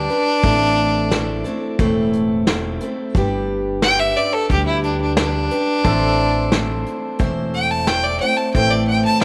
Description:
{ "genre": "honky-tonk and classic country", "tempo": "89 BPM", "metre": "4/4", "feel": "straight", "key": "A minor", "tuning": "A4 = 440 Hz", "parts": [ { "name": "clear fiddle", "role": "melody", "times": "0.0-9.2 s", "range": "D4 to A5", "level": "-21 LUFS", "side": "equal", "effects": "none" }, { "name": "picked steel-string acoustic guitar", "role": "accompaniment", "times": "0.0-9.2 s", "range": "A2 to C5", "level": "-24 LUFS", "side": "equal", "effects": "none" }, { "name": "upright bass", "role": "bass", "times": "0.0-9.0 s", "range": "E1 to D2", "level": "-27 LUFS", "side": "equal", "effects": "none" }, { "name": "vintage brush drum kit", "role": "drums", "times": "0.1-9.2 s", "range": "hi-hat, kick drum, snare drum", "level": "-24 LUFS", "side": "equal", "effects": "none" }, { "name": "warm concert grand piano", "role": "accompaniment", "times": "5.8-9.2 s", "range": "E4 to C5", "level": "-34 LUFS", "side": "equal", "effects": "none" }, { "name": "pedal steel guitar", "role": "sustained chords", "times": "5.8-9.2 s", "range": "A4 to E5", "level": "-31 LUFS", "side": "equal", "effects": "lush chorus" } ], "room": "moderate spring reverb, RT60 2.3 s", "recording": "none", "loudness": "-18 LUFS", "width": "mono", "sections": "0.0-9.2 A section", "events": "fiddle solo 0.0-9.2", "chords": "0.4 Am; 3.1 G; 5.8 Am" }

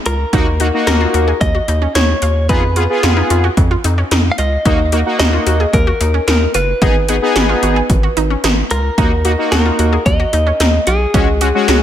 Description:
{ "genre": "synth-pop", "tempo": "111 BPM", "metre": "4/4", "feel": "straight", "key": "Eb minor", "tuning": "A4 = 440 Hz", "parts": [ { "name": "direct-recorded clean electric guitar", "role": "melody", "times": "0.1-11.8 s", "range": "Ab4 to F5", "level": "-19 LUFS", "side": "left 1 dB", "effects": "warbly pitch drift, tape echo" }, { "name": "analog pluck", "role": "arpeggios", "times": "0.1-11.8 s", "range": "Db4 to Ab4", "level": "-22 LUFS", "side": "equal", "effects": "chorus, tape echo" }, { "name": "rubbery square bass", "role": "bass", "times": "0.1-11.8 s", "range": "Gb1 to F2", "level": "-16 LUFS", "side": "equal", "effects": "none" }, { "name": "80s electronic pad drums", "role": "drums", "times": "0.1-11.8 s", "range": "hi-hat, kick drum, snare drum", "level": "-16 LUFS", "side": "equal", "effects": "overdrive" }, { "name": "analog synth brass", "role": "accompaniment", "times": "0.3-11.8 s", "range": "Ab3 to Ab4", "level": "-18 LUFS", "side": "left 1 dB", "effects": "chorus" } ], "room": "light reverb, digital ambience", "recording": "none", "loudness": "-11 LUFS", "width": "side -10 dB against mid", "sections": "0.0-11.8 A section", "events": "none", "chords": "0.3 Ebm; 2.5 Fdim; 4.7 Ebm; 6.8 Abm; 9.0 Ebm; 11.1 Dbsus4" }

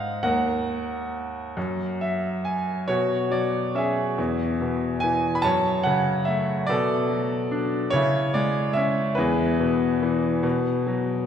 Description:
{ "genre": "classical, lyrical solo piano", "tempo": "45-48 BPM (dotted quarters)", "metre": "6/8", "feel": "rubato", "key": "B dorian", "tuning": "A4 = 440 Hz", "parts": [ { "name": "bright grand piano", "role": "solo", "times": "0.0-11.3 s", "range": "Eb2 to B5", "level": "-22 LUFS", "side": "equal", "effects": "none" } ], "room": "wet church reverb, RT60 2.8 s", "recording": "recorded in a church or concert hall", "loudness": "-22 LUFS", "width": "side -8 dB against mid", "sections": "0.0-2.9 A section; 2.9-11.3 B section", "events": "grand piano fill 1.6-2.9", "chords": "0.2 Ebm; 1.6 Gb; 2.9 Bsus2; 4.2 E; 5.4 F#m; 6.7 Bm7; 7.9 C#m; 9.2 E; 10.4 B5" }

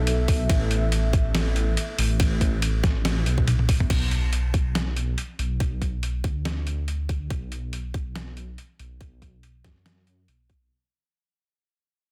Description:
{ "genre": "deep dubstep", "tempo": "141 BPM", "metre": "4/4", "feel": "swing 55% on 16ths, half-time", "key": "B minor", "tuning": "A4 = 440 Hz", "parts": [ { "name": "dark analog pad", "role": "sustained chords", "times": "0.0-3.9 s", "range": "B3 to E5", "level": "-36 LUFS", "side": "equal", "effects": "chorus" }, { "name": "dark detuned saw bass", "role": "bass", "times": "0.0-10.7 s", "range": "A1 to F#2", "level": "-28 LUFS", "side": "equal", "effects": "none" }, { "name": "trip hop sampler-style drum kit", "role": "drums", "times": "0.1-10.6 s", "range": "crash cymbal, hi-hat, ride cymbal, snare drum, toms", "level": "-31 LUFS", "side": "equal", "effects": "overdrive" }, { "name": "electronic kick drum", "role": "drums", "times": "0.3-10.6 s", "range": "none", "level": "-26 LUFS", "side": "equal", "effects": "overdrive" } ], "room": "little or no reverb", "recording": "dense, heavily limited modern master", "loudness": "-25 LUFS", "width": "mono", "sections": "0.0-3.9 A section; 3.9-10.7 B section", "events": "drop 0.0-3.9; drum fill 3.5-3.9; fade-out 3.9-10.7", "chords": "0.0 Asus2; 3.9 Bm" }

